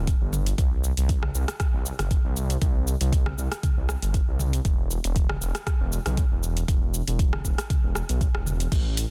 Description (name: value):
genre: afro house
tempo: 118 BPM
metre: 4/4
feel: swing 54% on 16ths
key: unclear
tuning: A4 = 441 Hz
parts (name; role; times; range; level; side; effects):
- dark detuned saw bass; bass; 0.0-9.1 s; D1 to C2; -28 LUFS; equal; sidechain pumping
- afro-pop drum kit; drums; 0.1-9.1 s; cabasa, crash cymbal, hi-hat, rim click, toms; -34 LUFS; equal; none
- electronic kick drum; drums; 0.1-8.8 s; none; -26 LUFS; equal; none
room: little or no reverb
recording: dense, heavily limited modern master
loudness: -25 LUFS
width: mono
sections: 0.0-9.1 A section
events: none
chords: none